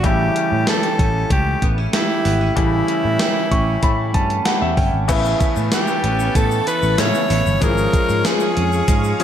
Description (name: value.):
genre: 1980s-style pop.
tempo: 95 BPM.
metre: 4/4.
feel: straight.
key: unclear.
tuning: A4 = 440 Hz.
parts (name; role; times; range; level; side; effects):
bright grand piano; accompaniment; 0.0-9.2 s; C#3 to C#6; -23 LUFS; left 3 dB; none.
direct-recorded clean electric guitar; riff; 0.0-9.2 s; E3 to G4; -25 LUFS; right 5 dB; lush chorus.
sustaining fretless electric bass; bass; 0.0-9.1 s; G1 to A2; -20 LUFS; equal; lush chorus.
gated 80s digital drum machine; drums; 0.0-9.2 s; crash cymbal, hi-hat, kick drum, snare drum; -20 LUFS; equal; gated reverb, gated reverb snare.
raspy alto saxophone; melody; 0.1-9.2 s; E4 to C#5; -21 LUFS; equal; ping-pong delay.
string machine, full ensemble; sustained chords; 5.1-9.2 s; G#4 to C#6; -27 LUFS; left 1 dB; ensemble chorus.
tube shaker; percussion; 5.1-9.2 s; none; -37 LUFS; left 10 dB; none.
room: moderate lush hall reverb, RT60 1.8 s.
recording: none.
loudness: -15 LUFS.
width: side -9 dB against mid.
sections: 0.0-5.1 A section; 5.1-9.2 B section.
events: grand piano fill 3.2-5.1.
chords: 0.0 A7; 5.1 Aadd9; 7.6 C#/G#.